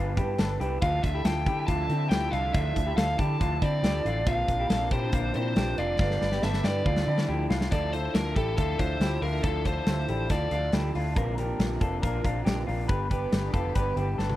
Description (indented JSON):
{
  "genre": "jangly indie pop",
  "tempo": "139 BPM",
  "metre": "4/4",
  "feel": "straight",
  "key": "D minor",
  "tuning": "A4 = 441 Hz",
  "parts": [
    { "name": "electric guitar through a small old amp", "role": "accompaniment", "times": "0.0-14.4 s", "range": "G2 to B4", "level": "-35 LUFS", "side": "right 5 dB", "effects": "ensemble chorus" },
    { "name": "electric guitar through a small old amp", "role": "arpeggios", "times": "0.0-14.4 s", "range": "C4 to B4", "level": "-33 LUFS", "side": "left 4 dB", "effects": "spring reverb" },
    { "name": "vintage muted fingered electric bass", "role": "bass", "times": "0.0-14.4 s", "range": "F1 to D3", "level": "-30 LUFS", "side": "equal", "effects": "none" },
    { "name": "big rock drum kit", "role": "drums", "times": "0.2-14.4 s", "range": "hi-hat, kick drum, snare drum, toms", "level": "-28 LUFS", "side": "equal", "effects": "none" },
    { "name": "biting lead guitar", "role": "melody", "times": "0.8-10.7 s", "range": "A4 to A5", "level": "-31 LUFS", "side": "equal", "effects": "overdrive" },
    { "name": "warm studio string section", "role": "sustained chords", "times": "0.8-14.4 s", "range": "C3 to E5", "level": "-39 LUFS", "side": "left 1 dB", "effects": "none" }
  ],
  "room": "little or no reverb",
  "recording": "dry, close 1970s-style studio recording",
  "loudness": "-24 LUFS",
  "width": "side -14 dB against mid",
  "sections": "0.0-7.7 A section; 7.7-14.4 B section",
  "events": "drum fill 6.0-7.7, 14.2",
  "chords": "0.0 G; 0.8 Dmadd9; 4.3 Bbadd9; 6.0 G; 6.9 Dmadd9; 11.2 Bbadd9; 12.9 G"
}